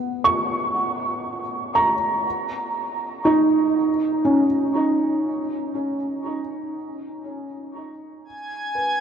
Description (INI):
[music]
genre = ambient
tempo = 60 BPM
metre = 3/4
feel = straight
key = unclear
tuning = A4 = 442 Hz
[part]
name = felt-muted upright piano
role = arpeggios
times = 0.0-9.0 s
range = C#4 to C#6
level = -20 LUFS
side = right 1 dB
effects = diffuse ambient delay
[part]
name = drifting glass-harmonics texture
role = texture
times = 8.3-9.0 s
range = G#5 to G#6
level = -24 LUFS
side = equal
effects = chorus, built-in reverb
[sound]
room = wet huge ambient reverb, RT60 7.7 s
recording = dark, warm production, nothing above 10.6 kHz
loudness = -20 LUFS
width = side -8 dB against mid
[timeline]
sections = 0.0-8.2 A section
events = fade-out on felt piano 0.0-8.2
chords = 0.0 Bsus2; 2.2 A#madd11; 8.2 G#m